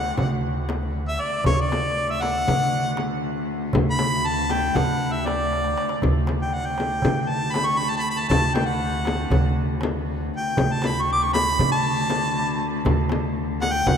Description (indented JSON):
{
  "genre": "Turkish makam ensemble",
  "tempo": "237 BPM (eighths)",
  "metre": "9/8",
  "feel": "straight",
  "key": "D makam rast",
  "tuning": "A4 = 440 Hz",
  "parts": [
    { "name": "clear harmonica", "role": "melody", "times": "0.0-14.0 s", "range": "C#5 to D6", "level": "-24 LUFS", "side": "equal", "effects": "slapback echo" },
    { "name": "upright bass", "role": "bass", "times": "0.0-14.0 s", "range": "D2 to D3", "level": "-28 LUFS", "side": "equal", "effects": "none" },
    { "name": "clear cello", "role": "drone", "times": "0.0-14.0 s", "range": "D2", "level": "-29 LUFS", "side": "left 1 dB", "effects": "stereo widening" },
    { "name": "darbuka", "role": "percussion", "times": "0.2-14.0 s", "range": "none", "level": "-28 LUFS", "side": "right 2 dB", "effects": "none" },
    { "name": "frame drum", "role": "percussion", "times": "0.2-14.0 s", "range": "none", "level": "-28 LUFS", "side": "left 4 dB", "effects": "none" }
  ],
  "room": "wet cathedral reverb, RT60 5.8 s",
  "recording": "in a vast, echoing space",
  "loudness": "-20 LUFS",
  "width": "side -7 dB against mid",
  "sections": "0.0-14.0 A section",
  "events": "drum fill 5.5-6.0",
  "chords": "none"
}